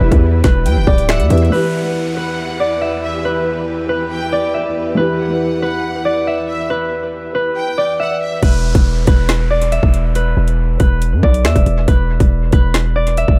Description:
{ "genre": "hip hop, drill", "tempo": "139 BPM", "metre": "4/4", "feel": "half-time", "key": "E minor", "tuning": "A4 = 440 Hz", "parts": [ { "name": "concert harp", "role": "melody", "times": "0.0-13.4 s", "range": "B4 to E5", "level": "-22 LUFS", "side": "equal", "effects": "low-pass filter, dub echo" }, { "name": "felt-muted upright piano", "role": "accompaniment", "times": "0.0-8.4 s", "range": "E3 to B4", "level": "-24 LUFS", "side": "equal", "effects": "low-pass filter, dub echo" }, { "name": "dark studio string section", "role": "sustained chords", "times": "0.0-8.4 s", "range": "E2 to B4", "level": "-26 LUFS", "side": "equal", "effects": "none" }, { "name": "hard-hitting 808-style bass", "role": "bass", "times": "0.0-1.5, 8.4-13.4 s", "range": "D1 to G2", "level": "-17 LUFS", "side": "equal", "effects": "none" }, { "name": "drill drum kit", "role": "drums", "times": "0.1-1.5, 8.4-13.4 s", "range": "finger snaps, hi-hat, kick drum, rim click, snare drum", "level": "-16 LUFS", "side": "equal", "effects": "none" }, { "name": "bright studio violin section", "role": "second line", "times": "0.7-8.4 s", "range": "E5 to G5", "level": "-30 LUFS", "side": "equal", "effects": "dub echo" }, { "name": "downlifter", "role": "sound effects", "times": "1.5-5.0, 8.4-11.9 s", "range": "none", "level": "-35 LUFS", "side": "equal", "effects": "none" } ], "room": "small room ambience", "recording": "echo-heavy mix", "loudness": "-15 LUFS", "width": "mono", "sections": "0.0-1.5 A section; 1.5-8.4 B section; 8.4-13.4 C section", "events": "none", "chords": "0.0 Em; 8.4 E5", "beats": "0.23 0.66 1.09 | 1.52 1.95 2.38 2.81 | 3.25 3.68 4.11 4.54 | 4.97 5.41 5.84 6.27 | 6.70 7.13 7.56 7.99 | 8.43 8.86 9.29 9.72 | 10.15 10.58 11.02 11.45 | 11.88 12.31 12.74 13.17" }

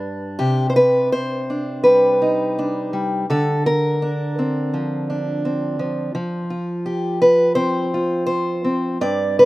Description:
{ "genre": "folk, solo fingerstyle acoustic guitar", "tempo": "84 BPM", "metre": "4/4", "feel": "rubato", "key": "unclear", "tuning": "A4 = 440 Hz", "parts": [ { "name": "fingerpicked acoustic archtop guitar", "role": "solo", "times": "0.0-9.5 s", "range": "G2 to D5", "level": "-17 LUFS", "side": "equal", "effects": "slapback echo" } ], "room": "light reverb", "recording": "recorded outdoors, with no room sound", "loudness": "-17 LUFS", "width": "side -18 dB against mid", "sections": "0.4-9.5 A section", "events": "none", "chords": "0.4 Cmadd9; 3.3 Bbadd9/D; 6.1 Fsus2", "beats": "| 0.38 1.12 1.85 2.57 | 3.29 4.01 4.72 5.44 | 6.15 6.86 7.57 8.29 | 9.02" }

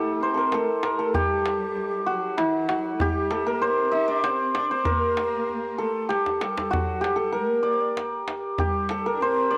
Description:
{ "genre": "Persian modal ensemble", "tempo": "97 BPM", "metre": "3/4", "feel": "straight", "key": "unclear", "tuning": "A4 = 445 Hz", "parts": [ { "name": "santur", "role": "melody", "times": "0.0-9.6 s", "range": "Eb4+45c to Eb5+45c", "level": "-26 LUFS", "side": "equal", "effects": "none" }, { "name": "breathy bright low ney", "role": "second line", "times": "0.0-9.6 s", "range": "Eb4+46c to Eb5+44c", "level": "-36 LUFS", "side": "equal", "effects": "none" }, { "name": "clear studio cello section", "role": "second line", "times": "0.0-9.6 s", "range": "Eb3+45c to Eb4+45c", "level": "-38 LUFS", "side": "equal", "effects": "none" }, { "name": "tombak", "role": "percussion", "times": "0.5-9.3 s", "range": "none", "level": "-32 LUFS", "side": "equal", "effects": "none" } ], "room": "moderate echo chamber reverb, RT60 1.8 s", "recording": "none", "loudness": "-25 LUFS", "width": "mono", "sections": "0.0-9.6 A section", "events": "drum fill 6.1-6.7", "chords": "none", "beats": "0.52 | 1.14 1.76 2.38 | 3.00 3.62 4.25 | 4.87 5.49 6.11 | 6.72 7.34 7.96 | 8.58 9.20" }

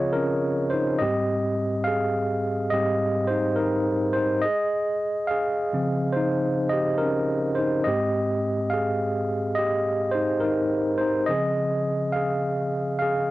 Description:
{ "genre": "hip hop", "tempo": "70 BPM", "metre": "4/4", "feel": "swing 64% on 16ths", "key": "Ab major", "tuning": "A4 = 441 Hz", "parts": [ { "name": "tine electric piano", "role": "solo", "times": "0.0-13.3 s", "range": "Ab2 to F5", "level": "-22 LUFS", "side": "equal", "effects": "medium stereo tremolo, cassette tape, low-pass filter" } ], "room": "light reverb", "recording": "home recording on cassette", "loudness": "-22 LUFS", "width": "side -17 dB against mid", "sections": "0.0-13.3 A section", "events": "tine electric piano solo 0.0-13.3", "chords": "0.0 Dbmaj9; 1.0 Abmaj7; 4.4 Dbmaj9; 7.9 Abmaj7; 11.3 Dbmaj9", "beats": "0.15 | 1.01 1.86 2.72 3.58 | 4.44 5.29 6.15 7.01 | 7.87 8.72 9.58 10.44 | 11.29 12.15 13.01" }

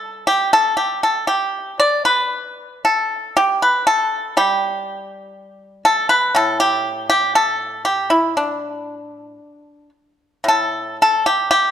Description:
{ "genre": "chinese traditional, Chinese solo plucked strings", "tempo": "59 BPM", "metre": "2/4", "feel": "uneven beats, rubato", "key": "unclear", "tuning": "A4 = 439 Hz", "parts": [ { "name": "pipa", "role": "solo", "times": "0.0-11.7 s", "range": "A2 to D5", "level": "-15 LUFS", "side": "equal", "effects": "none" } ], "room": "moderate recital hall reverb, RT60 1.8 s", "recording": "none", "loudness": "-15 LUFS", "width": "side -9 dB against mid", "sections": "0.0-10.5 A section; 10.5-11.7 B section", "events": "none", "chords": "none", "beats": "| 0.29 1.30 | 2.35 3.40 | 4.40 5.39 | 6.37 7.36 | 8.37 9.40 | 10.46 11.49" }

